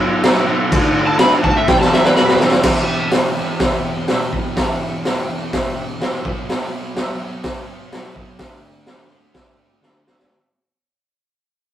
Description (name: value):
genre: garage rock duo or trio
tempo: 125 BPM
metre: 4/4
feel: straight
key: E minor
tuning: A4 = 440 Hz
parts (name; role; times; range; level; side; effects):
- overdriven combo organ; sustained chords; 0.0-6.4 s; D4 to D5; -32 LUFS; right 1 dB; none
- fuzz guitar; riff; 0.0-10.3 s; E2 to D4; -23 LUFS; equal; distortion
- raw garage drum kit; drums; 0.2-10.3 s; crash cymbal, hi-hat, kick drum, snare drum; -16 LUFS; equal; none
- overdriven slide guitar; melody; 1.1-2.4 s; B4 to B5; -17 LUFS; equal; none
room: light reverb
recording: rough rehearsal-room recording, warm saturation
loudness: -14 LUFS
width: side -11 dB against mid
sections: 0.0-2.6 A section; 2.6-10.3 B section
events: drum fill 1.7-2.6, 9.8-10.3; fade-out 2.6-10.3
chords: 0.0 Bm; 0.7 D; 1.7 Em; 6.2 Bm; 8.4 D5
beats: 0.24 | 0.71 1.19 1.67 2.15 | 2.63 3.11 3.59 4.07 | 4.55 5.03 5.51 5.99 | 6.47 6.95 7.43 7.91 | 8.39 8.87 9.35 9.82